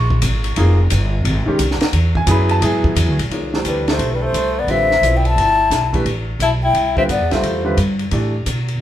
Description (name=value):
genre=modal jazz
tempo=175 BPM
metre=4/4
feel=swing 64% on 8ths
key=A minor from 3.3 s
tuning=A4 = 440 Hz
part: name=clear grand piano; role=accompaniment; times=0.0-8.3 s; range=D3 to Db6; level=-21 LUFS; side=right 1 dB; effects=none
part: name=upright bass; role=bass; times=0.0-8.8 s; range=F1 to B2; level=-18 LUFS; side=equal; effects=none
part: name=compact cocktail drum kit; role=drums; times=0.1-8.7 s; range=hi-hat, kick drum, ride cymbal, snare drum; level=-23 LUFS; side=left 1 dB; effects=none
part: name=breathy concert flute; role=melody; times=3.7-7.8 s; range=B4 to A5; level=-18 LUFS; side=left 2 dB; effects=none
part: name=breathy tenor saxophone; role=second line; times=3.7-7.8 s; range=G3 to E4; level=-22 LUFS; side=left 4 dB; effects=none
room=light reverb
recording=band playing live in one room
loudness=-14 LUFS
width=side -12 dB against mid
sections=0.0-3.3 A section; 3.3-8.8 B section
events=none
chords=0.0 Bbm9; 1.9 E; 3.3 Am9